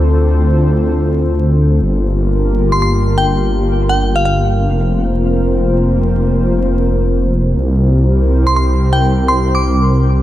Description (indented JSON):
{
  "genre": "drum and bass",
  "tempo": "167 BPM",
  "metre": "4/4",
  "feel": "swing 55% on 16ths",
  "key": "G dorian",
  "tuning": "A4 = 438 Hz",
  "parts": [
    { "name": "airy breathy pad", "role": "sustained chords", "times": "0.0-10.2 s", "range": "Bb3 to C5", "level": "-17 LUFS", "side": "left 1 dB", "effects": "chorus" },
    { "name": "detuned saw bass", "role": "bass", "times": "0.0-10.2 s", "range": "F1 to D2", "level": "-13 LUFS", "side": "equal", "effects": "tube saturation" },
    { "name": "glassy synth bell", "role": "melody", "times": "2.7-4.5, 8.5-9.8 s", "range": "F5 to D6", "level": "-18 LUFS", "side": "equal", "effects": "chorus, phaser, vintage 12-bit sampler grit, dub echo" }
  ],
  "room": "light reverb, digital ambience",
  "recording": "vinyl crackle",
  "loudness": "-11 LUFS",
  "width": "side -14 dB against mid",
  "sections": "0.0-10.2 A section",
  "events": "none",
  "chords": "0.0 Dm7; 1.8 Gm7; 4.7 Fsus4; 7.6 C7"
}